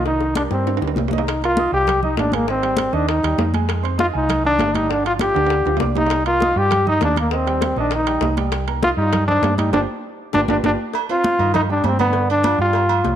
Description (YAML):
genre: latin, salsa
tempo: 199 BPM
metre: 4/4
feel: straight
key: C minor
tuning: A4 = 442 Hz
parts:
  - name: clear trombone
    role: melody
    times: 0.0-13.2 s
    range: Bb3 to G4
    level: -19 LUFS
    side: left 1 dB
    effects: none
  - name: warm concert grand piano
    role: accompaniment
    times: 0.0-13.1 s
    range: D3 to Eb6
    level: -26 LUFS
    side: right 10 dB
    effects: none
  - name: hollow-body short-scale fingered electric bass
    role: bass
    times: 0.0-13.2 s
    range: G1 to G2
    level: -23 LUFS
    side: equal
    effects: none
  - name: bongos and cowbell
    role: percussion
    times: 0.1-13.2 s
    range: none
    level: -30 LUFS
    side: left 12 dB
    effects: none
  - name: congas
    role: percussion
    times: 0.1-13.2 s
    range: none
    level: -26 LUFS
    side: left 2 dB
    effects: none
  - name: timbales and agogo bells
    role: percussion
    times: 0.4-13.2 s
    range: none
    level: -27 LUFS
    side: right 12 dB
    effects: none
room: moderate echo chamber reverb, RT60 1.7 s, small room ambience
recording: 1960s-style stereo with parts hard left and right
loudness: -16 LUFS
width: side -10 dB against mid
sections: 0.0-1.3 A section; 1.3-10.9 B section; 10.9-13.2 C section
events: drum fill 0.1-1.3, 5.4-6.1, 10.0-10.9; band accent 9.7-10.9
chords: 0.1 Cm7; 2.5 Abmaj7; 3.7 Fm7; 4.9 G7sus4; 6.1 Cm7; 7.3 Eb; 8.5 Cm7; 9.7 G7sus4; 10.3 G7; 10.9 Cmadd9; 12.1 G5